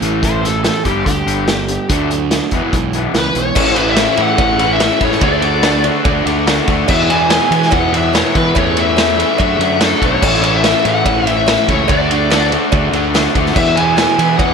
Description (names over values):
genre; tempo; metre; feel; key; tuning
classic rock; 144 BPM; 4/4; straight; A major; A4 = 438 Hz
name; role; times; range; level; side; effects
overdriven semi-hollow guitar; riff; 0.0-14.5 s; E2 to D4; -19 LUFS; right 12 dB; none
raw garage guitar; riff; 0.0-14.5 s; G2 to F#4; -19 LUFS; left 12 dB; overdrive
fuzz fingered electric bass; bass; 0.0-14.5 s; G1 to E3; -20 LUFS; equal; overdrive
vintage drum kit; drums; 0.0-14.5 s; crash cymbal, hi-hat, kick drum, ride cymbal, snare drum; -17 LUFS; equal; none
overdriven slide guitar; second line; 0.2-1.9 s; G4 to C5; -22 LUFS; left 1 dB; analog delay
bluesy overdriven lead guitar; melody; 3.2-14.5 s; A4 to G#5; -16 LUFS; left 2 dB; distortion
cowbell; percussion; 3.6-14.5 s; none; -27 LUFS; right 12 dB; none
room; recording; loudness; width
moderate large studio reverb, RT60 1.1 s, small room ambience; none; -11 LUFS; side -6 dB against mid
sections
0.0-3.6 A section; 3.6-14.5 B section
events
none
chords
0.0 A5; 0.9 G5; 1.9 D; 2.5 E; 3.6 A; 5.2 D; 6.9 E; 8.6 A/E; 9.4 D/F#; 10.2 A; 11.9 D; 13.6 E